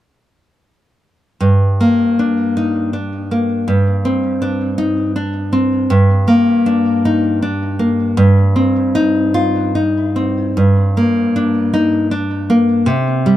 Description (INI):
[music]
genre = romantic piece for solo classical guitar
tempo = 70-83 BPM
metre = 3/4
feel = rubato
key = G minor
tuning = A4 = 440 Hz
[part]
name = nylon-string guitar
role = solo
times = 1.4-13.4 s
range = G2 to F4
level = -12 LUFS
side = equal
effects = none
[sound]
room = little or no reverb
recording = dry, close 1970s-style studio recording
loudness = -13 LUFS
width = side -13 dB against mid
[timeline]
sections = 1.4-10.6 A section; 10.6-13.4 B section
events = none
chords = 1.4 Gm; 3.7 Gsus4; 5.9 Gm; 8.2 Cm/G; 10.6 Gm